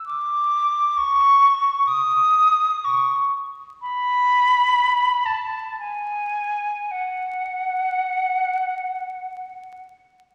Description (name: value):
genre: classical, free, expressive piece for unaccompanied flute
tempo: free time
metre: none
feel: none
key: F# dorian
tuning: A4 = 440 Hz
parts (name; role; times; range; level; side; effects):
- concert flute; solo; 0.1-9.8 s; F#5 to D#6; -21 LUFS; equal; none
room: wet concert hall reverb, RT60 2.0 s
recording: vinyl crackle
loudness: -20 LUFS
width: mono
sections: 0.0-10.3 A section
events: none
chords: none